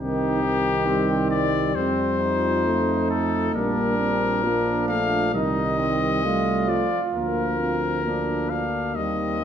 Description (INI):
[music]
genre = classical, brass quintet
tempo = 67 BPM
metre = 4/4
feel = rubato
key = Bb major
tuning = A4 = 443 Hz
[part]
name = clear trumpet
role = melody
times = 0.0-9.4 s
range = G4 to F5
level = -25 LUFS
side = left 4 dB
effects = none
[part]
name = warm flugelhorn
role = second line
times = 0.0-9.4 s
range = C4 to F4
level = -29 LUFS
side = right 6 dB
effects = none
[part]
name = mellow French horn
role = accompaniment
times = 0.0-9.4 s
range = G3 to C4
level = -29 LUFS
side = left 4 dB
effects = none
[part]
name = warm euphonium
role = accompaniment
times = 0.0-9.4 s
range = Eb3 to G3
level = -28 LUFS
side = right 3 dB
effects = none
[part]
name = mellow bass trombone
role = bass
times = 0.0-9.4 s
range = Bb1 to F2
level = -28 LUFS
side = right 2 dB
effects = none
[sound]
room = wet recital hall reverb, RT60 1.6 s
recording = recorded in a church or concert hall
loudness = -20 LUFS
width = side -8 dB against mid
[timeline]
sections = 0.0-9.4 A section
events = none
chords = 0.0 Cm; 1.8 F7; 3.5 Bb; 5.3 F7/C; 7.1 Bb/D